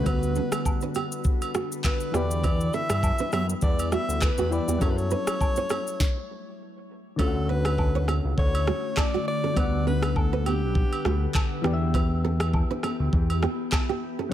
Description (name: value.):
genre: afrobeats.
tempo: 101 BPM.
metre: 4/4.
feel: swing 55% on 16ths.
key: unclear.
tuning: A4 = 440 Hz.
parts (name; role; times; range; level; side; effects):
breathy alto saxophone; melody; 0.0-11.4 s; G4 to E5; -32 LUFS; left 1 dB; tape echo.
soft electric-piano-like synth keys; accompaniment; 0.0-14.3 s; D3 to F#5; -33 LUFS; left 5 dB; chorus.
glassy FM pad; sustained chords; 0.0-14.3 s; D3 to F#5; -34 LUFS; left 2 dB; ensemble chorus, built-in reverb.
fat analog bass; bass; 0.0-13.5 s; B1 to G2; -26 LUFS; equal; none.
nylon-string guitar; riff; 0.1-14.3 s; A3 to C#5; -32 LUFS; right 7 dB; tape echo.
afro-pop drum kit; drums; 0.1-13.9 s; handclaps, kick drum, rim click, shaker, snare drum; -26 LUFS; equal; none.
agogo bells and woodblock; percussion; 0.1-13.9 s; none; -36 LUFS; right 4 dB; none.
room: little or no reverb.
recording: none.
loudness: -23 LUFS.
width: side -11 dB against mid.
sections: 0.0-7.2 A section; 7.2-14.3 B section.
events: stop 6.0-7.2; hi-hats muted 7.2-14.3.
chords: 0.1 Gmaj7/D; 2.1 Em; 4.8 F#m7; 7.2 Dmaj7; 9.6 Gmaj7/D; 11.6 Em.